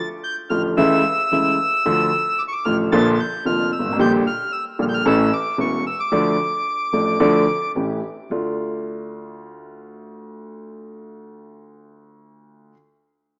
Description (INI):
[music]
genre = tango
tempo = 112 BPM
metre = 4/4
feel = rubato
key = D harmonic minor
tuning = A4 = 439 Hz
[part]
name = bandoneon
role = melody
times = 0.0-7.7 s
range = C#6 to A6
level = -24 LUFS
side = equal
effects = none
[part]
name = warm grand piano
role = accompaniment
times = 0.5-12.7 s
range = E1 to A4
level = -23 LUFS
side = equal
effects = none
[part]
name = upright bass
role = bass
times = 0.5-8.5 s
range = E1 to D2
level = -33 LUFS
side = equal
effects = none
[sound]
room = moderate plate reverb, RT60 2.3 s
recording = rough home demo mix, small speaker sound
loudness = -20 LUFS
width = mono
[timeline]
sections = 0.0-8.3 A section; 8.3-12.6 B section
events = none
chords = 0.0 Dm; 0.8 A/C#; 1.9 Dm; 2.9 Bb; 4.0 Gm/Bb; 5.1 A; 6.1 Dm; 7.8 A7; 8.3 Dm